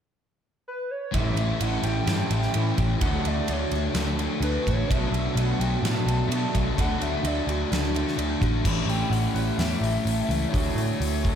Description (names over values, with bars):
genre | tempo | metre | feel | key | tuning
rock, shoegaze and dream pop | 128 BPM | 4/4 | straight | D major | A4 = 442 Hz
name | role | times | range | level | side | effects
pure sine lead | melody | 0.7-11.4 s | B4 to A5 | -33 LUFS | equal | chorus, ping-pong delay
picked twelve-string acoustic guitar | arpeggios | 1.1-11.4 s | E3 to G4 | -36 LUFS | left 4 dB | lush chorus, ping-pong delay
electric guitar through a small old amp | riff | 1.1-11.4 s | A2 to E4 | -30 LUFS | right 8 dB | reverse reverb
thick fuzz guitar | riff | 1.1-11.4 s | A2 to D4 | -29 LUFS | left 6 dB | distortion, analog chorus
vintage muted picked electric bass | bass | 1.1-11.3 s | A1 to B2 | -27 LUFS | equal | none
huge arena drum kit | drums | 1.1-11.4 s | crash cymbal, hi-hat, kick drum, ride cymbal, snare drum | -30 LUFS | equal | none
room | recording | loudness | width
moderate lush hall reverb, RT60 2.0 s | dreamy mix soaked in reverb | -22 LUFS | side -8 dB against mid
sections
0.0-1.1 A section; 1.1-8.7 B section; 8.7-11.4 C section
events
none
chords
0.0 N.C.; 1.1 A7; 3.0 Dmaj7; 4.9 Bm7; 6.8 D; 8.7 A7; 10.5 Dmaj7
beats
0.20 0.67 | 1.14 1.61 2.08 2.55 | 3.02 3.49 3.96 4.43 | 4.90 5.37 5.84 6.31 | 6.78 7.25 7.72 8.19 | 8.66 9.13 9.60 10.07 | 10.54 11.02